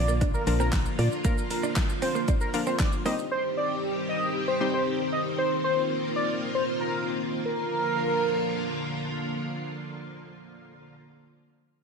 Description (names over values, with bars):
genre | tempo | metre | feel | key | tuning
dance-pop | 116 BPM | 4/4 | straight | Bb major | A4 = 440 Hz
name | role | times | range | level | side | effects
octave-doubled lead | melody | 0.0-9.0 s | Bb4 to Eb5 | -28 LUFS | equal | chorus, sidechain pumping, ping-pong delay
string machine, full ensemble | sustained chords | 0.0-10.9 s | D3 to G4 | -30 LUFS | equal | ensemble chorus, sidechain pumping
direct-recorded clean electric guitar | riff | 0.0-3.1 s | Bb3 to D4 | -34 LUFS | right 6 dB | lush chorus
organ-like FM bass | bass | 0.0-1.1 s | Bb1 to Bb2 | -25 LUFS | equal | sidechain pumping
deep house drum kit | drums | 0.1-3.3 s | handclaps, hi-hat, kick drum, shaker, snare drum | -27 LUFS | equal | none
hollow square pluck | accompaniment | 0.5-5.0 s | F3 to C5 | -32 LUFS | left 4 dB | chorus, sidechain pumping
room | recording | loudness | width
moderate plate reverb, RT60 1.4 s | dreamy mix soaked in reverb | -25 LUFS | side -5 dB against mid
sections
0.0-7.5 A section; 7.5-11.6 B section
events
drop 0.0-7.5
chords
0.0 Bb; 3.1 Cm; 5.4 F7sus4; 7.5 Bb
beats
0.21 0.73 | 1.25 1.76 2.28 2.80 | 3.31 3.83 4.35 4.87 | 5.38 5.90 6.42 6.93 | 7.45 7.97 8.49 9.00 | 9.52 10.04 10.56